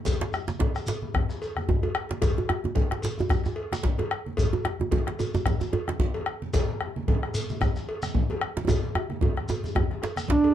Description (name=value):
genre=west african traditional, West African drum ensemble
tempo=111 BPM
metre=4/4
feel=swing 56% on 16ths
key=unclear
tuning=A4 = 441 Hz
part: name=bombo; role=percussion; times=0.1-10.4 s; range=none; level=-27 LUFS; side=left 2 dB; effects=none
part: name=congas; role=percussion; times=0.1-10.4 s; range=none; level=-33 LUFS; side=right 4 dB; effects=none
part: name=cowbell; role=percussion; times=0.1-10.5 s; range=none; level=-35 LUFS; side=equal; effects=none
part: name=djembe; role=percussion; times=0.1-10.5 s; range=none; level=-34 LUFS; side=left 5 dB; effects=none
part: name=shekere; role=percussion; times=0.1-10.3 s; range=none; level=-36 LUFS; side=equal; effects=none
part: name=djembe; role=percussion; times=0.2-10.4 s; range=none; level=-29 LUFS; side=right 4 dB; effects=none
part: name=mellow duduk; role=melody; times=10.3-10.5 s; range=D4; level=-18 LUFS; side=right 3 dB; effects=none
room=moderate small room reverb, RT60 0.6 s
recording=dark, warm production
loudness=-25 LUFS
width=side -11 dB against mid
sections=0.0-10.5 A section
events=drum fill 1.5-2.2, 8.7-10.5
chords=none